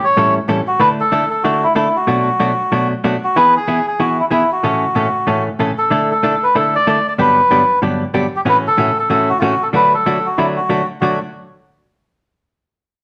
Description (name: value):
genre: country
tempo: 188 BPM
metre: 4/4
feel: swing 62% on 8ths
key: D major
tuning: A4 = 440 Hz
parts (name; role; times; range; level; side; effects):
- melodica; melody; 0.0-11.2 s; E4 to D5; -17 LUFS; equal; none
- hollow-body jazz guitar; accompaniment; 0.2-11.2 s; G2 to A4; -20 LUFS; equal; none
room: wet studio reverb, RT60 0.9 s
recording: none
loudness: -15 LUFS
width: mono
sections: 0.8-11.0 A section; 11.0-12.3 B section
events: none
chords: 0.0 A7; 0.8 Dsus2; 2.1 Bm7; 3.4 E; 4.6 A; 5.9 Dsus2; 7.2 Gmaj7; 8.5 A6; 9.7 D